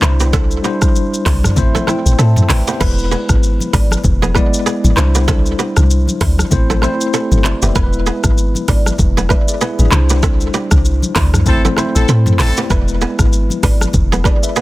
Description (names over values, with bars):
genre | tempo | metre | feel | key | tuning
afrobeats | 97 BPM | 4/4 | swing 58% on 16ths | unclear | A4 = 440 Hz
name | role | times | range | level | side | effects
tine electric piano | accompaniment | 0.0-14.6 s | G3 to A5 | -20 LUFS | left 2 dB | medium stereo tremolo
kora | riff | 0.0-14.6 s | B3 to C5 | -21 LUFS | right 5 dB | digital delay
deep log drum bass | bass | 0.0-14.3 s | E1 to A2 | -14 LUFS | equal | none
afro-pop drum kit | drums | 0.0-14.6 s | crash cymbal, handclaps, hi-hat, kick drum, rim click, shaker, toms | -16 LUFS | equal | soft clipping on snare
congas | percussion | 0.0-14.4 s | none | -25 LUFS | left 2 dB | none
warm horn section | second line | 11.5-12.6 s | C4 to A4 | -23 LUFS | left 2 dB | none
room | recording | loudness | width
little or no reverb | dense, heavily limited modern master | -11 LUFS | side -18 dB against mid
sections
0.0-2.8 A section; 2.8-14.6 B section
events
tine electric piano fill 1.0-2.8; band accent 10.2-12.7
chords
0.0 Cadd9; 1.6 Am; 2.8 E; 5.0 Cadd9; 6.5 Am; 7.8 E; 9.9 Cadd9; 11.5 Am; 12.7 E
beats
| 0.33 0.95 1.57 2.19 | 2.81 3.43 4.04 4.66 | 5.28 5.90 6.52 7.14 | 7.76 8.37 8.99 9.61 | 10.23 10.85 11.47 12.09 | 12.70 13.32 13.94 14.56